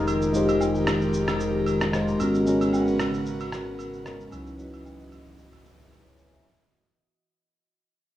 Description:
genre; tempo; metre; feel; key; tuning
amapiano; 113 BPM; 4/4; swing 55% on 16ths; unclear; A4 = 440 Hz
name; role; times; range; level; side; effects
bright tine electric piano; accompaniment; 0.0-6.6 s; Gb3 to Bb5; -25 LUFS; left 1 dB; phaser
airy breathy pad; sustained chords; 0.0-6.4 s; Db3 to Eb5; -29 LUFS; equal; chorus
sub bass with octave; bass; 0.0-6.4 s; F1 to Db2; -35 LUFS; equal; none
electronic shaker and rim click; drums; 0.1-6.4 s; none; -32 LUFS; equal; none
agogo bells and woodblock; percussion; 0.1-6.0 s; none; -37 LUFS; right 6 dB; none
room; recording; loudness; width
moderate recital hall reverb, RT60 1.4 s, digital ambience; worn, warbling old tape, cassette tape, warbly pitch drift, small room ambience; -21 LUFS; side -13 dB against mid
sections
0.0-6.4 A section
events
fade-out 0.0-6.4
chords
0.0 Fm11; 2.2 Abm11; 4.3 Dbm11

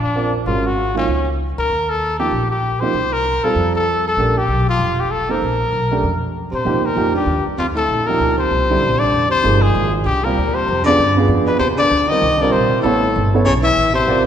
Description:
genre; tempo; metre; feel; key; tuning
jazz; 194 BPM; 4/4; swing 61% on 8ths; Eb major from 6.7 s; A4 = 436 Hz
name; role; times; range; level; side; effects
clear trumpet; melody; 0.0-14.2 s; Db4 to E5; -18 LUFS; left 3 dB; none
upright bass; bass; 0.0-14.3 s; F1 to Bb2; -21 LUFS; equal; none
warm baby grand piano; accompaniment; 0.2-14.3 s; D3 to D5; -21 LUFS; right 4 dB; none
breathy baritone saxophone; second line; 6.5-14.2 s; F2 to E3; -22 LUFS; right 1 dB; none
room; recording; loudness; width
wet scoring stage reverb, RT60 2.1 s; recorded in a church or concert hall; -14 LUFS; side -9 dB against mid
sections
0.0-6.7 A section; 6.7-14.3 B section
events
none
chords
0.5 Ab5; 1.1 N.C.; 1.7 Ebadd9; 2.9 C5; 3.6 Fadd9; 4.2 Bbmaj7(no3); 6.7 Ebmaj9; 7.9 Gm7b5; 8.5 C7; 9.1 Fm7; 10.4 Dm7b5; 11.0 G7b9; 11.6 Cm7; 12.8 A9

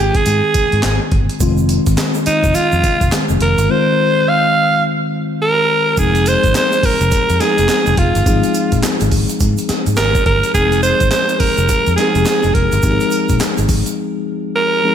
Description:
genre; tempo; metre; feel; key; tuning
R&B, new jack swing; 105 BPM; 4/4; swing 61% on 16ths; F minor; A4 = 439 Hz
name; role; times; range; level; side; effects
raspy alto saxophone; melody; 0.0-14.9 s; Eb4 to F5; -15 LUFS; right 2 dB; slapback echo
mellow tine electric piano; accompaniment; 0.0-14.9 s; Eb3 to Ab4; -19 LUFS; left 4 dB; medium stereo tremolo
vintage muted fingered electric bass; bass; 0.0-13.8 s; F1 to Ab2; -17 LUFS; equal; none
breakbeat sampler-style drum kit; drums; 0.1-14.0 s; handclaps, hi-hat, kick drum, snare drum, tambourine; -18 LUFS; equal; none
tube shaker; percussion; 1.4-14.0 s; none; -32 LUFS; right 9 dB; none
room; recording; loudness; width
moderate concert hall reverb, RT60 1.8 s; big arena sound; -12 LUFS; side -9 dB against mid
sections
0.0-6.0 A section; 6.0-14.9 B section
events
drums muted 14.0-14.9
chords
0.0 Ab6; 1.4 Fm7; 3.7 Ab6; 6.0 Fm7; 8.3 Ab6; 10.5 Fm7; 12.8 Ab6

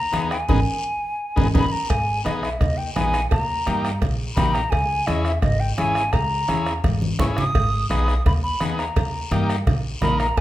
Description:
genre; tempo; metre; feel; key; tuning
latin, cumbia; 170 BPM; 4/4; straight; G# harmonic minor; A4 = 440 Hz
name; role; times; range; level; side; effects
hollow concert flute; melody; 0.0-10.4 s; D#5 to D#6; -24 LUFS; equal; none
upright bass; bass; 0.0-10.4 s; G#1 to G2; -24 LUFS; equal; none
overdriven combo organ; accompaniment; 0.1-10.3 s; A#3 to A#4; -28 LUFS; left 2 dB; none
bombo; percussion; 0.1-10.4 s; none; -24 LUFS; equal; none
congas; percussion; 0.1-10.4 s; none; -28 LUFS; left 1 dB; none
guiro; percussion; 0.1-10.4 s; none; -37 LUFS; left 4 dB; none
timbales and cowbell; percussion; 0.5-10.4 s; none; -30 LUFS; right 6 dB; none
room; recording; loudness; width
moderate large studio reverb, RT60 1.1 s; minimal, uncompressed stereo recording; -19 LUFS; side -14 dB against mid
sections
0.0-1.9 A section; 1.9-10.4 B section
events
band accent 0.5-1.9; drum fill 6.8-7.5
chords
0.0 G#m; 3.3 D#; 4.7 C#m; 7.5 G#m; 9.0 D#

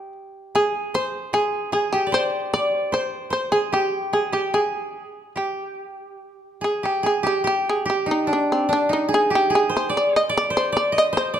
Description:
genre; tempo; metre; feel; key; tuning
japanese traditional, Japanese chamber music; 74 BPM; 4/4; uneven beats, rubato; G miyako bushi; A4 = 439 Hz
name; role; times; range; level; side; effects
shamisen; melody; 0.0-11.3 s; C4 to Eb5; -22 LUFS; equal; none
koto; second line; 0.0-11.4 s; D4 to Eb5; -23 LUFS; right 1 dB; none
room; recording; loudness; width
moderate recital hall reverb, RT60 1.9 s; dark, warm production; -19 LUFS; side -10 dB against mid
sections
0.0-7.0 A section; 7.0-11.4 B section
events
none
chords
none

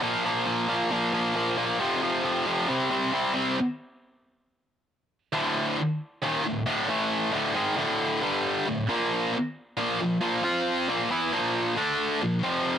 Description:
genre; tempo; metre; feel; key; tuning
metal; 135 BPM; 4/4; straight; D minor; A4 = 439 Hz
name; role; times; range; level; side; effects
heavy high-gain guitar; solo; 0.0-12.8 s; D2 to F4; -24 LUFS; equal; distortion, cassette tape
room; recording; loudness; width
light reverb; home recording on cassette; -24 LUFS; side -9 dB against mid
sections
0.0-3.6 A section; 3.6-5.3 B section; 5.3-12.8 C section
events
none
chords
0.0 Bb5; 1.8 F5; 2.7 C5; 3.6 N.C.; 5.3 D5; 6.9 A5; 7.3 D5; 8.2 G5; 8.7 D5; 8.9 Bb5; 10.4 F5; 10.9 Bb5; 11.8 D5; 12.2 Bb5

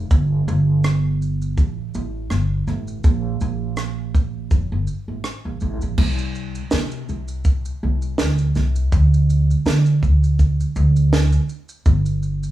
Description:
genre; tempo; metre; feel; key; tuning
acoustic pop; 82 BPM; 4/4; swing 55% on 16ths; unclear; A4 = 436 Hz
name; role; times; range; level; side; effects
upright bass; bass; 0.0-12.5 s; F1 to D3; -18 LUFS; equal; none
compact cocktail drum kit; drums; 0.1-12.5 s; crash cymbal, kick drum, rim click, shaker, snare drum; -19 LUFS; right 1 dB; none
room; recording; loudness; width
light reverb; small room ambience; -17 LUFS; side -14 dB against mid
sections
0.0-6.0 A section; 6.0-12.5 B section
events
none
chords
none

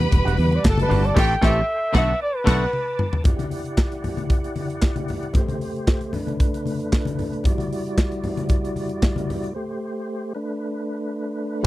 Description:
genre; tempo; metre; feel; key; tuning
disco; 114 BPM; 4/4; straight; E minor; A4 = 440 Hz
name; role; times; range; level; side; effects
clear symphonic string section; second line; 0.0-2.6, 11.6-11.7 s; F#4 to B5; -28 LUFS; right 2 dB; none
clav; accompaniment; 0.0-2.7, 11.6-11.7 s; D3 to G4; -28 LUFS; left 5 dB; none
electric guitar with an envelope filter; accompaniment; 0.0-2.6, 11.6-11.7 s; G3 to A4; -28 LUFS; right 7 dB; none
tonewheel organ; sustained chords; 0.0-11.7 s; G3 to D6; -29 LUFS; equal; chorus vibrato, fast rotary speaker
fingered electric bass; bass; 0.0-2.7, 11.6-11.7 s; E1 to E2; -21 LUFS; equal; none
modern studio drum kit; drums; 0.0-11.7 s; crash cymbal, handclaps, hi-hat, kick drum, snare drum, toms; -20 LUFS; equal; none
congas; percussion; 0.0-9.4 s; none; -29 LUFS; left 3 dB; none
breathy flugelhorn; melody; 0.4-3.3 s; A4 to G5; -23 LUFS; equal; none
room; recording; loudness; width
little or no reverb; dry, close 1970s-style studio recording; -20 LUFS; side -16 dB against mid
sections
0.0-3.3 A section; 3.3-11.6 B section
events
flugelhorn solo 0.0-3.3; band accent 1.2-3.3; drum fill 2.7-3.3; break 9.6-11.6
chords
0.0 Em9; 1.2 Am7; 1.9 Bm7; 3.3 Em9; 5.4 Am7; 6.1 Bm7; 7.5 Em9; 9.6 Am7; 10.3 Bm7

